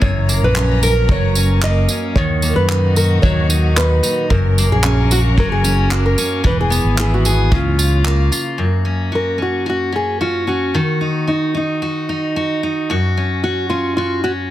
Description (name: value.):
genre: acoustic pop.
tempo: 112 BPM.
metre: 4/4.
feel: straight.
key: F# major.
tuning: A4 = 440 Hz.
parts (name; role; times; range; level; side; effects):
nylon-string guitar; melody; 0.0-14.3 s; D#4 to D#5; -21 LUFS; equal; none.
picked steel-string acoustic guitar; accompaniment; 0.0-14.5 s; F#2 to A#4; -19 LUFS; equal; none.
rich studio string section; sustained chords; 0.0-8.6 s; A#2 to A#5; -27 LUFS; equal; none.
fingered electric bass; bass; 0.0-8.3 s; E1 to F#2; -16 LUFS; equal; none.
unplugged drum kit; drums; 0.0-8.4 s; handclaps, kick drum, tambourine; -20 LUFS; equal; soft clipping on snare.
room: studio ambience.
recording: dense, heavily limited modern master.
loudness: -14 LUFS.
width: side -13 dB against mid.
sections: 0.0-8.6 A section; 8.6-14.5 B section.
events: none.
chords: 0.0 F#; 2.2 D#m; 4.3 F#; 6.4 E; 7.5 C#6; 8.6 F#5; 10.7 D#m; 12.9 F#5.